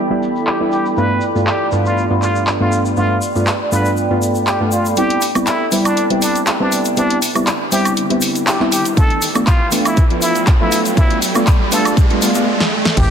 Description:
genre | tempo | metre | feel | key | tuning
deep house | 120 BPM | 4/4 | swing 53% on 16ths | A minor | A4 = 440 Hz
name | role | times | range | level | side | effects
deep mellow chord stab | stabs | 0.0-13.1 s | G2 to F4 | -18 LUFS | equal | chorus, cassette tape, sidechain pumping, ping-pong delay
deep dark ambient pad | texture | 0.0-13.1 s | E4 to B5 | -23 LUFS | right 2 dB | chorus, built-in reverb, sidechain pumping
tube shaker | percussion | 0.2-12.4 s | none | -27 LUFS | left 4 dB | none
trumpet with plunger mute | melody | 0.5-13.1 s | D4 to B4 | -21 LUFS | equal | digital delay
house drum kit | drums | 0.5-13.1 s | crash cymbal, handclaps, hi-hat, ride cymbal, snare drum, woodblock | -20 LUFS | equal | none
riser and sub drop | sound effects | 6.8-13.1 s | none | -23 LUFS | right 2 dB | none
electronic kick drum | drums | 9.0-13.1 s | none | -13 LUFS | equal | none
rubbery square bass | bass | 13.0-13.1 s | A1 | -14 LUFS | equal | sidechain pumping
room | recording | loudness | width
moderate lush hall reverb, RT60 2.1 s | dense, heavily limited modern master, low-pass filter | -13 LUFS | side -8 dB against mid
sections
0.0-5.0 A section; 5.0-13.0 B section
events
filter sweep 0.0-5.0; build-up 5.0-13.0; filter sweep on synth stab 5.0-13.0; riser 6.8-13.0; drum fill 12.6-13.0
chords
0.0 Em7; 1.0 G7; 5.0 Am7; 9.0 Bm7b5

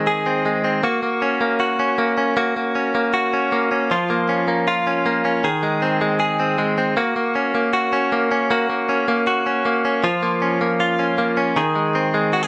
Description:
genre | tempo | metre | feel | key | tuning
indie pop | 157 BPM | 4/4 | straight | unclear | A4 = 441 Hz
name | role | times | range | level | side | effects
direct-recorded clean electric guitar | solo | 0.0-12.5 s | Eb3 to Ab4 | -20 LUFS | equal | none
room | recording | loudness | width
moderate small room ambience, RT60 0.5 s | none | -20 LUFS | mono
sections
0.0-12.5 A section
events
none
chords
0.0 Ab; 0.8 Gb/Bb; 3.9 Bbm; 5.4 Ab; 7.0 Gb/Bb; 10.0 Bbm; 11.6 Ab

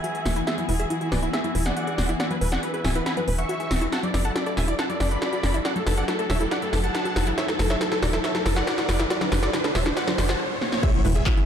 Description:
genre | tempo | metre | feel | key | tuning
uplifting trance | 139 BPM | 4/4 | straight | unclear | A4 = 439 Hz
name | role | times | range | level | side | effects
dense compressed supersaw | melody | 0.0-11.4 s | D4 to C#6 | -30 LUFS | equal | sidechain pumping, low-pass filter, dub echo
wide unison pluck | second line | 0.0-11.4 s | D4 to C#6 | -35 LUFS | equal | none
dark studio string section | sustained chords | 0.0-11.5 s | E3 to A4 | -33 LUFS | equal | sidechain pumping
wide unison pluck | arpeggios | 0.0-11.4 s | F#3 to F#5 | -32 LUFS | left 2 dB | sidechain pumping, digital delay
big-room dance drum kit | drums | 0.0-11.5 s | crash cymbal, handclaps, hi-hat, snare drum | -27 LUFS | equal | sidechain pumping on hats, sidechain pumping on cymbals
riser and impact | sound effects | 0.2-11.5 s | none | -33 LUFS | equal | none
tight sequencer bass | bass | 0.3-11.2 s | D1 to F#1 | -25 LUFS | equal | sidechain pumping
electronic kick drum | drums | 10.8-11.3 s | none | -22 LUFS | equal | none
room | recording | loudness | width
light reverb, digital ambience | dark, warm production | -22 LUFS | side -8 dB against mid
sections
0.0-10.8 A section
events
build-up 0.0-10.8; drum fill 0.0-10.4, 10.6; filter sweep on synth arpeggio sound 0.0-10.8; stop 10.4-10.8; impact 10.8-11.5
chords
0.0 Eadd9; 3.9 Dadd9; 10.8 Eadd9

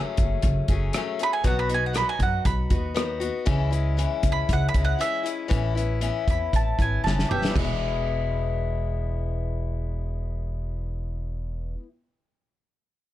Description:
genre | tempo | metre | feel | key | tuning
folk rock and heartland rock | 117 BPM | 4/4 | straight | E major | A4 = 440 Hz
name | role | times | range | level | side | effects
picked acoustic archtop guitar | accompaniment | 0.0-11.9 s | E2 to G#4 | -29 LUFS | left 7 dB | none
upright bass | bass | 0.2-11.7 s | E1 to F#2 | -27 LUFS | equal | none
natural country drum kit | drums | 0.2-7.7 s | crash cymbal, hi-hat, kick drum, rim click, snare drum, toms | -26 LUFS | equal | none
bowl-back mandolin | second line | 1.2-7.6 s | G4 to B5 | -27 LUFS | right 5 dB | none
room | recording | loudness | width
small room ambience | dark, warm production | -23 LUFS | side -14 dB against mid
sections
0.0-7.6 A section; 7.6-11.7 B section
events
mandolin solo 0.0-7.6; drum fill 7.0-7.6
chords
0.0 F#madd9; 1.4 B; 3.5 C#m; 5.5 Aadd9; 7.6 E

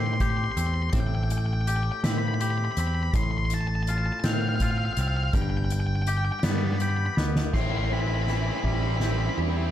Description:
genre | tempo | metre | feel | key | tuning
post-rock | 54 BPM (dotted quarters) | 6/8 | straight | A minor | A4 = 440 Hz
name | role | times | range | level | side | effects
octave-fuzz lead guitar | melody | 0.0-9.4 s | F5 to C6 | -32 LUFS | left 1 dB | distortion, slapback echo
twangy electric guitar | arpeggios | 0.0-9.7 s | G2 to G4 | -33 LUFS | left 4 dB | slapback echo
picked electric bass | bass | 0.0-9.7 s | G1 to A2 | -26 LUFS | equal | none
soft-mallet drum kit | drums | 0.2-9.5 s | crash cymbal, hi-hat, kick drum, ride cymbal, snare drum | -29 LUFS | equal | none
tight distorted guitar | riff | 7.5-9.7 s | C4 to E4 | -32 LUFS | right 1 dB | distortion
room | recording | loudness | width
small room reverb | dark, warm production | -23 LUFS | side -11 dB against mid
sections
0.0-7.5 A section; 7.5-9.7 B section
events
drum fill 7.2-7.5, 7.5-9.7; build-up 7.5-9.7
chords
0.0 Am7; 3.1 F/A; 5.3 G; 7.5 Am7

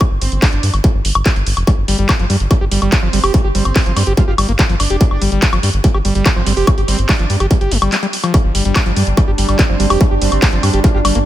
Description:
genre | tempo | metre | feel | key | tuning
psychedelic trance | 144 BPM | 4/4 | straight | unclear | A4 = 440 Hz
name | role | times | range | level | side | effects
electronic kick drum | drums | 0.0-10.9 s | none | -14 LUFS | equal | distortion
techno drum kit | drums | 0.0-11.2 s | handclaps, hi-hat, woodblock | -19 LUFS | left 1 dB | none
round analog bass | bass | 0.1-11.2 s | F1 to G2 | -16 LUFS | equal | none
metallic wobble bass | second line | 0.2-11.0 s | C4 to F4 | -28 LUFS | right 6 dB | chorus, sidechain pumping, high-pass filter, dub echo
overdriven acid bass | riff | 1.7-11.2 s | F3 to G4 | -20 LUFS | moving between left 5 dB and right 6 dB | distortion, auto-pan, sidechain pumping, digital delay
bubbling stepped-filter texture | sustained chords | 8.3-11.3 s | G3 to D4 | -20 LUFS | right 2 dB | chorus, built-in reverb, sidechain pumping
room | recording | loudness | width
little or no reverb | none | -11 LUFS | side -13 dB against mid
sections
0.0-11.3 A section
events
break 7.9-8.3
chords
0.0 G5

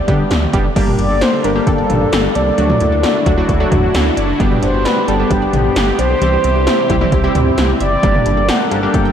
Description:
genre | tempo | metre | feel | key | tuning
synth-pop | 132 BPM | 4/4 | straight | unclear | A4 = 440 Hz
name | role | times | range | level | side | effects
mellow horn-like synth lead | melody | 0.0-9.1 s | G4 to G5 | -18 LUFS | equal | chorus, diffuse ambient delay
analog pluck | arpeggios | 0.0-9.1 s | D3 to G5 | -24 LUFS | left 4 dB | chorus, diffuse ambient delay
funky polysynth comp | accompaniment | 0.1-9.1 s | F#3 to G4 | -20 LUFS | right 1 dB | chorus
smooth gliding synth bass | bass | 0.1-9.1 s | F#1 to D3 | -18 LUFS | equal | none
80s electronic pad drums | drums | 0.1-9.0 s | crash cymbal, hi-hat, kick drum, snare drum, toms | -18 LUFS | equal | gated reverb on snare and toms
sweeping resonant pad | sustained chords | 0.8-9.1 s | C3 to Bb4 | -21 LUFS | equal | chorus
room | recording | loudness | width
moderate huge ambient reverb, RT60 7.9 s | dreamy mix soaked in reverb | -12 LUFS | side -8 dB against mid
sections
0.8-9.1 A section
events
none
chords
0.0 G/D; 0.8 Gmadd9; 2.6 Dadd9; 4.4 G; 6.2 C; 8.0 Gmadd9

